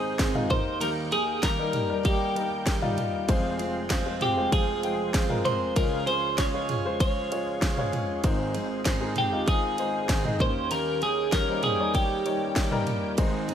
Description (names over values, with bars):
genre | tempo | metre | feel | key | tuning
piano-driven pop | 97 BPM | 4/4 | straight | unclear | A4 = 440 Hz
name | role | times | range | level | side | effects
twelve-string electric guitar | melody | 0.0-12.8 s | G4 to Db5 | -28 LUFS | right 1 dB | none
warm grand piano | accompaniment | 0.0-13.5 s | F1 to G5 | -31 LUFS | left 4 dB | none
overdriven tonewheel organ | sustained chords | 0.0-13.5 s | Eb3 to G5 | -38 LUFS | equal | chorus vibrato, slow rotary speaker
picked steel-string acoustic guitar | riff | 0.0-13.5 s | Ab2 to Ab4 | -33 LUFS | right 4 dB | none
house drum kit | drums | 0.2-13.5 s | kick drum, ride cymbal, snare drum, toms | -27 LUFS | equal | none
room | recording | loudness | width
light reverb | none | -24 LUFS | side -9 dB against mid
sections
0.0-13.5 A section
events
none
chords
0.0 Ab; 0.5 Eb; 3.3 Fm; 5.8 Db; 8.2 Ab; 10.4 Eb7